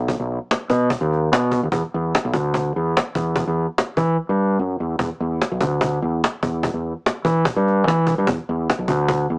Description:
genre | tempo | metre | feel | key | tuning
blues rock power trio and southern rock | 146 BPM | 4/4 | straight | E minor | A4 = 440 Hz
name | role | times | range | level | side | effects
growling fingered electric bass | bass | 0.0-9.4 s | B1 to E3 | -19 LUFS | equal | overdrive
cajon | drums | 0.1-9.2 s | none | -21 LUFS | equal | none
room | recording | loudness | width
light reverb | rough rehearsal-room recording, tube saturation, small speaker sound | -18 LUFS | side -30 dB against mid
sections
0.0-5.0 A section; 5.0-9.4 B section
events
kick and snare drop out 4.2-5.0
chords
none

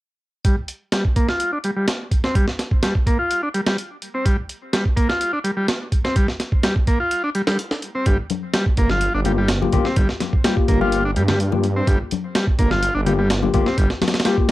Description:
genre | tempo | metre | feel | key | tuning
breakbeat, breaks | 126 BPM | 4/4 | straight | unclear | A4 = 440 Hz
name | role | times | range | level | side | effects
combo organ | riff | 0.4-14.4 s | G3 to F4 | -22 LUFS | equal | tube saturation, low-pass filter, cassette tape, tape echo
breakbeat sampler-style drum kit | drums | 0.4-14.5 s | hi-hat, kick drum, snare drum | -19 LUFS | right 1 dB | cassette tape
detuned saw bass | bass | 8.1-14.5 s | G1 to G2 | -22 LUFS | right 1 dB | none
congas | percussion | 8.3-14.1 s | none | -28 LUFS | left 7 dB | none
bright tine electric piano | stabs | 9.3-14.5 s | Bb3 to G4 | -23 LUFS | left 6 dB | cassette tape, tape echo
room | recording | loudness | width
moderate studio reverb, RT60 0.5 s | home recording on cassette | -17 LUFS | side -16 dB against mid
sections
0.4-14.5 A section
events
filter sweep on transistor combo organ 0.4-14.5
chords
0.4 Gm7

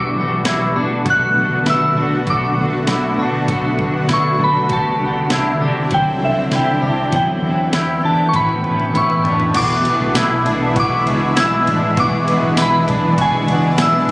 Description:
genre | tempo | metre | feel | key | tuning
dream pop | 99 BPM | 4/4 | straight | unclear | A4 = 441 Hz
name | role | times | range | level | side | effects
soft synth bell | melody | 0.0-14.1 s | E5 to F#6 | -18 LUFS | equal | chorus, digital delay
twelve-string electric guitar | accompaniment | 0.0-14.1 s | B2 to B4 | -25 LUFS | equal | harmonic tremolo, ensemble chorus
shimmering ambient pad | sustained chords | 0.0-14.1 s | D3 to F#4 | -20 LUFS | equal | chorus, built-in reverb
clean electric guitar | arpeggios | 0.0-14.1 s | F#3 to F#4 | -22 LUFS | left 1 dB | ensemble chorus, digital delay
vintage muted picked electric bass | bass | 0.0-14.1 s | A1 to E3 | -21 LUFS | equal | none
clean 12-bit digital drum machine | drums | 0.5-14.1 s | crash cymbal, hi-hat, kick drum, ride cymbal, snare drum, tambourine, toms | -23 LUFS | equal | none
glockenspiel with rubber mallets | texture | 9.5-14.1 s | G#5 to F#6 | -30 LUFS | equal | none
room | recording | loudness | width
moderate recital hall reverb, RT60 1.6 s, digital ambience | recorded on a phone in the room, club reverb, compression | -14 LUFS | side -22 dB against mid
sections
0.0-9.5 A section; 9.5-14.1 B section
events
drum fill 8.3-9.5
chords
0.0 Bm7; 4.7 Cadd9; 7.1 Em; 8.3 Aadd9; 9.5 E7

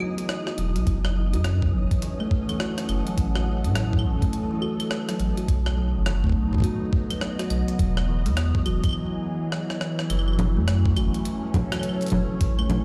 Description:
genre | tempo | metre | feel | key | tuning
IDM | 104 BPM | 4/4 | swing 62% on 16ths | F# dorian | A4 = 436 Hz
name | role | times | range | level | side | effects
phased analog pad | sustained chords | 0.0-12.8 s | E3 to F#5 | -34 LUFS | equal | phaser, chorus
kalimba | arpeggios | 0.0-12.7 s | C#3 to F#4 | -32 LUFS | equal | vintage 12-bit sampler grit, tape echo
jungle sampler-style drum kit | drums | 0.0-12.8 s | claves, congas, hi-hat, rim click | -33 LUFS | equal | tape echo
flickering grainy texture | texture | 0.0-8.9 s | D#4 to D#6 | -45 LUFS | equal | built-in reverb, sidechain pumping
warm sub bass | bass | 0.6-12.8 s | E1 to A2 | -26 LUFS | equal | tube saturation
electronic kick drum | drums | 0.9-12.6 s | none | -25 LUFS | equal | none
room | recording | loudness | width
little or no reverb | played on a big sound system in a bare room, large studio reverb | -24 LUFS | mono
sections
0.0-10.1 A section; 10.1-12.8 B section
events
break 8.9-10.1; drum fill 9.5-10.1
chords
0.0 Emaj9; 0.9 F#m7; 3.2 A; 5.5 B7; 7.8 Emaj9; 10.1 F#m7

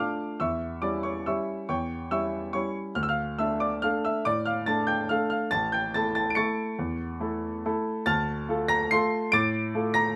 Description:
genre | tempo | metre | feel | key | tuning
classical, piano waltz | 142 BPM | 3/4 | rubato | D minor | A4 = 440 Hz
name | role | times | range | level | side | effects
clear grand piano | solo | 0.0-10.2 s | A1 to D7 | -28 LUFS | equal | none
room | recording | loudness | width
light reverb | none | -28 LUFS | mono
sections
0.0-10.2 A section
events
none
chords
0.4 C#dim/E; 3.0 Dm; 5.5 A; 8.1 Dm

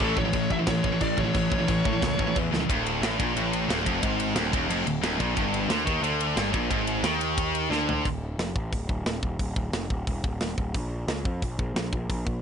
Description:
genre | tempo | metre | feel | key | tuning
heavy metal | 179 BPM | 4/4 | straight | D harmonic minor | A4 = 444 Hz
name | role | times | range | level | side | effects
high-gain lead guitar | melody | 0.0-2.4 s | A4 to E5 | -30 LUFS | equal | distortion, digital delay
heavy high-gain guitar | riff | 0.0-8.0 s | D2 to A3 | -29 LUFS | right 17 dB | distortion
scooped high-gain guitar | riff | 0.0-8.0 s | D2 to A3 | -28 LUFS | left 14 dB | distortion
fuzz picked electric bass | bass | 0.0-12.4 s | D1 to A2 | -30 LUFS | equal | overdrive
tight metal drum kit | drums | 0.0-12.3 s | china cymbal, hi-hat, kick drum, ride cymbal, snare drum, toms | -30 LUFS | equal | none
room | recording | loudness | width
little or no reverb | nothing above 10.9 kHz | -24 LUFS | side -7 dB against mid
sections
0.0-2.7 A section; 2.7-8.1 B section; 8.1-12.4 C section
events
half time 0.0-2.7; drum fill 2.5, 7.7-8.1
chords
0.0 A; 2.7 Dm; 5.4 G5; 8.1 N.C.; 10.7 Bb5

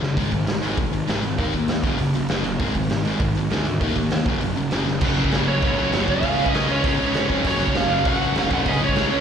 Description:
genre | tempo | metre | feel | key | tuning
punk rock | 198 BPM | 4/4 | straight | unclear | A4 = 440 Hz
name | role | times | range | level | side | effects
sludgy distorted guitar | riff | 0.0-9.2 s | Gb2 to Eb4 | -25 LUFS | left 8 dB | overdrive, slapback echo
fuzz picked electric bass | bass | 0.0-9.2 s | Gb1 to Ab2 | -26 LUFS | right 1 dB | overdrive
raw garage drum kit | drums | 0.0-9.0 s | crash cymbal, hi-hat, kick drum, snare drum | -25 LUFS | right 1 dB | none
distorted electric guitar | riff | 0.2-9.2 s | Gb2 to Eb4 | -28 LUFS | right 11 dB | distortion, slapback echo
heavy high-gain guitar | riff | 5.0-9.2 s | Gb2 to Db4 | -26 LUFS | right 1 dB | distortion, slapback echo
biting lead guitar | melody | 5.5-9.2 s | Db5 to Gb5 | -24 LUFS | right 4 dB | overdrive, slapback echo
room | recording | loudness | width
studio reverb | live gig heard through the venue's PA, recital hall reverb | -19 LUFS | side -8 dB against mid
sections
0.0-5.0 A section; 5.0-9.2 B section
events
drum fill 0.0, 4.9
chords
0.2 Ab5; 1.4 Eb5; 1.8 Gb5; 2.6 Ab5; 3.8 Eb5; 4.3 Gb5; 6.2 Db; 7.5 Gb5; 8.7 Db5

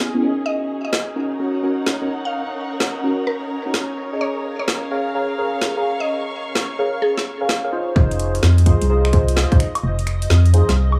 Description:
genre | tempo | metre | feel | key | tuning
UK garage, two-step garage | 128 BPM | 4/4 | swing 65% on 16ths | F phrygian | A4 = 440 Hz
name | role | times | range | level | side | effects
soft string machine | sustained chords | 0.0-11.0 s | Db4 to Eb5 | -33 LUFS | equal | phaser, ensemble chorus, vintage 12-bit sampler grit, sidechain pumping
dark chamber string section | texture | 0.0-8.0 s | Db4 to Db6 | -32 LUFS | equal | sidechain pumping
deep mellow chord stab | stabs | 0.1-10.7 s | Cb4 to F5 | -25 LUFS | equal | chorus, phaser, tape echo
mallet-like synth pluck | melody | 0.5-7.2 s | Ab4 to F5 | -28 LUFS | equal | chorus, tape echo
garage drum kit | drums | 0.9-11.0 s | finger snaps, hi-hat, snare drum, woodblock | -25 LUFS | equal | none
organ-like FM bass | bass | 8.0-11.0 s | F1 to F2 | -17 LUFS | equal | none
electronic kick drum | drums | 8.0-9.6 s | none | -17 LUFS | equal | none
room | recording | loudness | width
light reverb, digital ambience | echo-heavy mix, small room ambience | -19 LUFS | mono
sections
0.0-8.0 A section; 8.0-11.0 B section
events
drop 8.0-11.0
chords
0.5 Ebm7; 4.0 Bbm7; 8.0 Fm7

